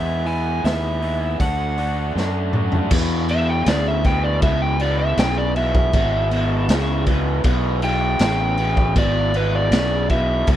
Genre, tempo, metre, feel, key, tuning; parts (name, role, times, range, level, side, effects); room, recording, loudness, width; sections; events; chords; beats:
blues rock power trio and southern rock; 79 BPM; 4/4; straight; A4 = 439 Hz
overdriven slide guitar; melody; 0.0-10.5 s; B4 to G#5; -23 LUFS; equal; slapback echo
raw garage guitar; riff; 0.0-10.6 s; E2 to F#4; -24 LUFS; equal; overdrive
growling fingered electric bass; bass; 0.0-10.6 s; G#1 to F#2; -22 LUFS; equal; overdrive
raw garage drum kit; drums; 0.3-10.6 s; crash cymbal, hi-hat, kick drum, snare drum, toms; -22 LUFS; equal
little or no reverb; -17 LUFS; side -12 dB against mid
0.0-2.9 A section; 2.9-10.6 B section
drum fill 2.2-2.9; electric slide guitar solo 2.9-10.6
0.0 E; 1.4 D; 2.9 E
0.64 1.40 2.15 | 2.91 3.67 4.42 5.18 | 5.94 6.69 7.45 8.21 | 8.96 9.72 10.48